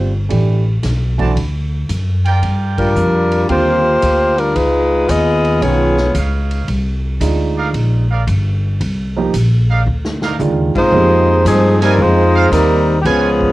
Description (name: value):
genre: jazz, big band swing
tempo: 113 BPM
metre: 4/4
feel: swing 68% on 8ths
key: C minor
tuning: A4 = 440 Hz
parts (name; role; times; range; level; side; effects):
- warm upright piano; accompaniment; 0.0-12.4 s; D3 to G4; -20 LUFS; right 5 dB; cassette tape
- upright bass; bass; 0.0-13.5 s; G1 to G2; -16 LUFS; equal; none
- swinging big-band drum kit; drums; 0.3-13.5 s; hi-hat, kick drum, ride cymbal, snare drum, toms; -27 LUFS; equal; cassette tape
- clear trumpet section; stabs; 1.2-13.3 s; Eb4 to A5; -21 LUFS; right 5 dB; cassette tape
- mellow saxophone section; melody; 2.8-6.1, 10.8-13.5 s; F3 to Eb5; -12 LUFS; left 1 dB; cassette tape
- warm trombone section; second line; 10.8-13.5 s; Cb3 to C4; -22 LUFS; right 7 dB; none
room: light reverb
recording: home recording on cassette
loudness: -12 LUFS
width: side -17 dB against mid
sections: 0.0-10.9 A section; 10.9-13.5 B section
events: band accent 2.7, 10.7; drum fill 9.9-10.9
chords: 0.3 A7sus2; 1.4 D; 2.4 Gm7; 4.6 Db9; 6.7 Cm11; 10.9 Fm7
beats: | 0.30 0.83 1.36 1.89 | 2.42 2.96 3.49 4.02 | 4.55 5.08 5.61 6.15 | 6.68 7.21 7.74 8.27 | 8.80 9.34 9.87 10.40 | 10.93 11.46 11.99 12.52 | 13.05